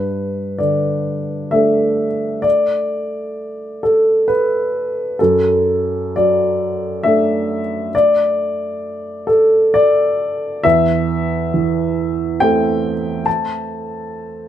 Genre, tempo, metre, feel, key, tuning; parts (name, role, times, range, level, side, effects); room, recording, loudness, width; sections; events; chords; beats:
neoclassical minimalist piano; 67 BPM; 3/4; uneven beats, rubato; A4 = 440 Hz
warm upright piano; solo; 0.0-14.5 s; E2 to A5; -15 LUFS; equal
moderate studio reverb, RT60 0.7 s; band playing live in one room; -14 LUFS; side -11 dB against mid
0.0-14.5 A section
0.0 Gadd9; 5.2 D/F#; 10.6 Am/E
0.61 1.52 | 2.44 3.36 4.28 | 5.19 6.14 7.04 | 7.93 8.81 9.75 | 10.64 11.52 12.39 | 13.26 14.13